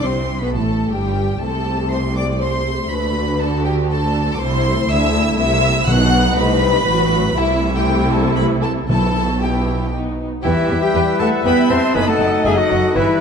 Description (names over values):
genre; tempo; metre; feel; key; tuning
quick classical-period movement for symphony orchestra; 120 BPM; 3/4; straight; E minor from 4.4 s; A4 = 440 Hz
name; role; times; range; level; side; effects
warm chamber violin section; melody; 0.0-13.2 s; E5 to F#6; -24 LUFS; left 2 dB; none
warm symphonic violin section; second line; 0.0-13.0 s; A3 to F#5; -23 LUFS; left 3 dB; none
warm chamber viola section; accompaniment; 0.0-13.2 s; F#3 to E5; -22 LUFS; left 1 dB; none
clear chamber double bass section; bass; 0.0-13.0 s; F#1 to E2; -22 LUFS; right 2 dB; none
dark chamber cello section; bass; 0.0-13.2 s; G2 to C4; -22 LUFS; right 3 dB; none
timpani; percussion; 5.9-6.6, 8.9-9.6 s; B2; -23 LUFS; equal; none
bright oboe; second line; 10.4-13.2 s; E4 to C5; -26 LUFS; right 1 dB; none
concert flute; second line; 10.4-13.2 s; B4 to A5; -24 LUFS; left 2 dB; none
mellow clarinet; second line; 10.4-13.2 s; E4 to C5; -21 LUFS; left 3 dB; none
mellow French horn section; sustained chords; 10.4-13.2 s; F#3 to E4; -23 LUFS; left 4 dB; none
mellow trumpet; stabs; 10.4-13.2 s; A4 to B4; -24 LUFS; right 1 dB; none
room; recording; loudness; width
moderate scoring stage reverb, RT60 1.4 s; dark, warm production; -15 LUFS; side -6 dB against mid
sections
0.0-10.4 A section; 10.4-13.2 B section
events
none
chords
0.0 Am9; 1.4 Am7/C; 2.9 D; 4.4 Am/C; 5.9 B; 7.4 Am/C; 8.9 Em/B; 9.9 B; 10.4 Em; 12.0 D#dim/F#